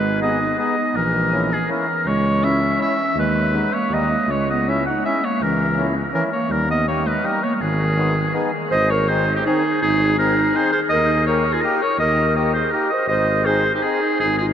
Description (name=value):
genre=alpine folk, alpine dance band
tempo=163 BPM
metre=3/4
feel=straight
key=G# minor, Ab major from 8.7 s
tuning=A4 = 440 Hz
part: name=warm oboe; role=melody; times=0.0-14.5 s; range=G4 to F#5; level=-20 LUFS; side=equal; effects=diffuse ambient delay
part: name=dark clarinet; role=second line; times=0.0-14.5 s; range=D#3 to C5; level=-22 LUFS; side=right 2 dB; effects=diffuse ambient delay
part: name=mellow tuba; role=bass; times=0.0-14.5 s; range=G#1 to Eb2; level=-23 LUFS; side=left 1 dB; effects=none
part: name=mellow accordion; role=accompaniment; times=0.2-14.0 s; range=G3 to G#4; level=-27 LUFS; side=left 2 dB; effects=none
room=wet huge ambient reverb, RT60 8.9 s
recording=dreamy mix soaked in reverb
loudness=-17 LUFS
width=side -9 dB against mid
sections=0.0-8.7 A section; 8.7-14.5 B section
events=none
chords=0.0 G#m; 1.0 A#dim; 2.1 C#m; 3.2 G#m/D#; 3.9 D#; 4.3 C#m; 5.4 A#dim/C#; 6.5 D#; 7.6 G#m; 8.7 Ab; 10.9 Eb; 13.1 Ab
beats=0.21 0.58 | 0.95 1.32 1.69 | 2.06 2.42 2.79 | 3.16 3.53 3.91 | 4.28 4.66 5.03 | 5.40 5.77 6.13 | 6.50 6.86 7.22 | 7.59 7.96 8.33 | 8.70 9.08 9.45 | 9.82 10.18 10.55 | 10.91 11.27 11.63 | 11.99 12.36 12.73 | 13.10 13.46 13.83 | 14.20